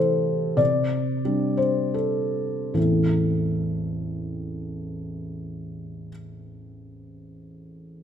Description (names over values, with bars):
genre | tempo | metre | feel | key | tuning
neoclassical minimalist piano | 74-98 BPM | 3/4 | rubato | A minor | A4 = 440 Hz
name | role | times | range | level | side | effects
felt-muted upright piano | solo | 0.0-8.0 s | A1 to D5 | -23 LUFS | left 1 dB | none
room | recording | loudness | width
moderate scoring stage reverb, RT60 1.8 s | minimal, uncompressed stereo recording | -22 LUFS | side -8 dB against mid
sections
0.0-2.8 A section; 2.8-7.5 B section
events
slowing down 0.0-2.8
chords
0.0 Am7/C; 0.6 Csus2; 2.8 Am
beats
| 0.59 1.24 1.96 | 2.75 3.55 4.33 | 5.13 5.93 6.73